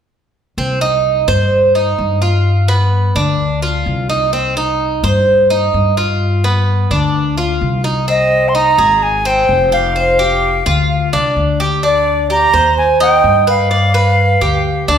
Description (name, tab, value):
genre	latin, Cuban son and guajira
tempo	128 BPM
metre	4/4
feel	straight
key	C minor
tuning	A4 = 439 Hz
part	Cuban tres	arpeggios	0.6-15.0 s	B3 to D5	-14 LUFS	right 2 dB	none
part	upright bass	bass	0.6-15.0 s	F1 to G2	-16 LUFS	left 1 dB	none
part	reedy concert flute	melody	8.1-14.9 s	D5 to C6	-14 LUFS	equal	none
room	wet large studio reverb, RT60 1.4 s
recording	heard from further back in the room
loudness	-11 LUFS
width	side -8 dB against mid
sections	0.6-8.1 A section; 8.1-15.0 B section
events	none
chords	0.6 Cm; 2.5 G7; 4.3 Cm; 6.2 G7; 8.1 Cm7; 9.0 Ab; 10.0 Fsus2; 10.9 Csus24; 11.8 Gsus4/D; 12.8 Cm/Eb; 13.7 G